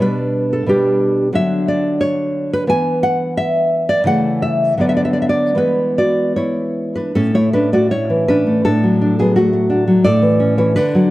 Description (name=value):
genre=romantic piece for solo classical guitar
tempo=74-92 BPM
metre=2/4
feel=rubato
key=A major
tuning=A4 = 440 Hz
part: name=nylon-string guitar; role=solo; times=0.0-11.1 s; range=A2 to G#5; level=-13 LUFS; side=equal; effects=none
room=light reverb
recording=close, detailed microphones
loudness=-13 LUFS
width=side -16 dB against mid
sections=0.0-7.2 A section; 7.2-11.1 B section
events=none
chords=0.0 G/B; 1.3 D; 2.7 E5; 4.1 A/C#; 4.8 Bm/D; 5.6 E; 7.2 A; 8.6 D/A; 10.1 A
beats=| 0.01 0.69 | 1.34 2.01 | 2.69 3.37 | 4.07 4.80 | 5.58 6.36 | 7.16 7.91 | 8.64 9.36 | 10.05 10.77